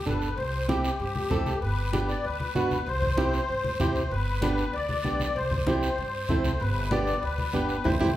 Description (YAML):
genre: latin, cumbia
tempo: 193 BPM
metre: 4/4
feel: straight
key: G major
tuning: A4 = 440 Hz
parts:
  - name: musette accordion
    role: second line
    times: 0.0-8.1 s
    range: G4 to D5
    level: -30 LUFS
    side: left 2 dB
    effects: tape echo
  - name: flamenco guitar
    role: accompaniment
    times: 0.1-8.1 s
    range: B3 to A4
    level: -29 LUFS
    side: right 3 dB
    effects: none
  - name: upright bass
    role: bass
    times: 0.1-8.1 s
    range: G1 to G2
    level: -31 LUFS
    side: equal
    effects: none
  - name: congas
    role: percussion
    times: 0.1-8.1 s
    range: none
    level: -32 LUFS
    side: left 1 dB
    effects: none
  - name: guiro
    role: percussion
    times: 0.1-8.1 s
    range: none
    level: -41 LUFS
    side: right 3 dB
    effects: none
room: wet large studio reverb, RT60 0.8 s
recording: band playing live in one room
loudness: -24 LUFS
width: side -13 dB against mid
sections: 0.0-8.2 A section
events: band accent 7.8-8.2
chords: 0.4 C; 1.6 G; 2.9 C; 4.1 G; 5.4 C; 6.6 G